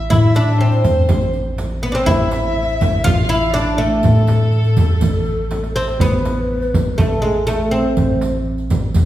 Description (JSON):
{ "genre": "Arabic maqam ensemble", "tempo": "122 BPM", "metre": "4/4", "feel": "straight", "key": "A maqam nahawand", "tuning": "A4 = 440 Hz", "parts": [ { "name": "oud", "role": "melody", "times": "0.0-8.4 s", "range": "G#3 to F4", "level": "-19 LUFS", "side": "equal", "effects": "none" }, { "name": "rich chamber violin section", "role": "second line", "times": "0.0-5.8 s", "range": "A4 to F5", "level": "-28 LUFS", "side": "equal", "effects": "none" }, { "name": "mellow tine electric piano", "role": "bass", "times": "0.0-9.1 s", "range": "A1 to A2", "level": "-18 LUFS", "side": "left 1 dB", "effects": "slow stereo tremolo" }, { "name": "breathy mellow low ney", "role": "second line", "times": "0.1-8.5 s", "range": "G#4 to F5", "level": "-26 LUFS", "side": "left 3 dB", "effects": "none" }, { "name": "darbuka", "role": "percussion", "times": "0.1-9.1 s", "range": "none", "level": "-24 LUFS", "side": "right 2 dB", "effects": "none" }, { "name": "frame drum", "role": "percussion", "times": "0.1-9.1 s", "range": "none", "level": "-21 LUFS", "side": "right 1 dB", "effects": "none" }, { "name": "riq", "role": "percussion", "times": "0.1-9.1 s", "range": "none", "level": "-30 LUFS", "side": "right 3 dB", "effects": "none" } ], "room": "wet recital hall reverb, RT60 1.5 s", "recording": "heard from further back in the room", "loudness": "-14 LUFS", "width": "side -13 dB against mid", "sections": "0.0-6.0 A section; 6.0-9.1 B section", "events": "drum fill 5.5-6.0", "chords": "none" }